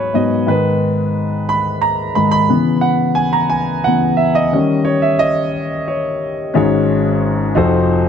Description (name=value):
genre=gospel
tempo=59 BPM (dotted quarters)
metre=6/8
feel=straight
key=unclear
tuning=A4 = 440 Hz
part: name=warm grand piano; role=solo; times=0.0-8.1 s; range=F1 to B5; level=-13 LUFS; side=equal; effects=none
room=light reverb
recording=dark, warm production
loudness=-13 LUFS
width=side -7 dB against mid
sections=0.0-6.6 A section; 6.6-8.1 B section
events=grand piano solo 0.0-6.6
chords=0.5 G#madd9; 2.5 C#m7; 4.5 D#7; 6.6 Ab7sus4; 7.6 F7b9